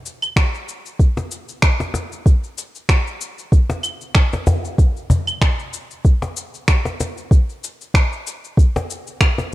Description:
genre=downtempo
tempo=95 BPM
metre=4/4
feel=swing 55% on 16ths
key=none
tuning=none
part: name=electronic cabasa, claves and finger snaps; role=drums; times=0.1-9.5 s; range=none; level=-22 LUFS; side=equal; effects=none
part: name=electronic kick drum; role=drums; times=0.4-9.3 s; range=none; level=-14 LUFS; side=equal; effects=none
part: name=cajon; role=percussion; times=1.2-9.5 s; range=none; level=-20 LUFS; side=left 1 dB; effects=none
room=little or no reverb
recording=dark, warm production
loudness=-16 LUFS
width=side -17 dB against mid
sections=0.0-9.5 A section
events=none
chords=none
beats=0.37 | 1.00 1.63 2.26 2.89 | 3.52 4.16 4.79 5.42 | 6.05 6.68 7.31 7.95 | 8.58 9.21

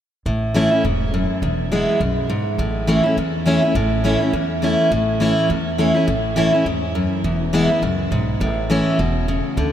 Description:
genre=bluegrass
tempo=206 BPM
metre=4/4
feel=swing 56% on 8ths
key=A major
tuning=A4 = 437 Hz
part: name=picked steel-string acoustic guitar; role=accompaniment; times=0.3-9.7 s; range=E2 to E4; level=-17 LUFS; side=equal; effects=none
part: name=upright bass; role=bass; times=0.3-9.7 s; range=E1 to E2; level=-25 LUFS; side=right 1 dB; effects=none
room=wet huge ambient reverb, RT60 7.1 s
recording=in a vast, echoing space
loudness=-16 LUFS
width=side -10 dB against mid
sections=0.3-9.6 A section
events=none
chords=0.3 A; 1.4 E; 2.6 A; 7.2 E; 8.4 A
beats=| 0.26 0.55 0.84 1.13 | 1.42 1.71 2.00 2.29 | 2.58 2.87 3.17 3.46 | 3.75 4.04 4.33 4.62 | 4.91 5.20 5.49 5.78 | 6.08 6.37 6.66 6.95 | 7.24 7.53 7.82 8.11 | 8.40 8.70 8.99 9.28 | 9.57

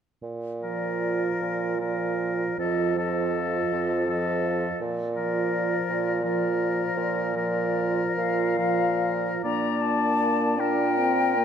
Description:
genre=classical, slow romantic movement for wind quintet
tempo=45-57 BPM (dotted quarters)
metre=6/8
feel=rubato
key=Bb major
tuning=A4 = 440 Hz
part: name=mellow bassoon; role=bass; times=0.2-11.4 s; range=F2 to Bb2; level=-29 LUFS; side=right 2 dB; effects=none
part: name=concert flute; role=melody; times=0.6-11.4 s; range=D5 to Bb5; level=-30 LUFS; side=left 6 dB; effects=none
part: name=clear oboe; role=second line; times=0.6-11.4 s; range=A4 to D5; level=-30 LUFS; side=left 5 dB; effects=none
part: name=warm French horn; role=accompaniment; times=0.6-11.4 s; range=F3 to D4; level=-30 LUFS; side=right 1 dB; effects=none
part: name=warm clarinet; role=accompaniment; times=0.6-11.4 s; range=D4 to F4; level=-30 LUFS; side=right 7 dB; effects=none
room=wet concert hall reverb, RT60 2.0 s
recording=none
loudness=-23 LUFS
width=side -8 dB against mid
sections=0.2-9.4 A section; 9.4-11.4 B section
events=none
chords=0.2 Bb; 2.6 F7; 4.8 Bb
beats=| 0.23 1.42 | 2.58 3.73 | 4.80 5.88 | 6.97 8.17 | 9.45 10.61

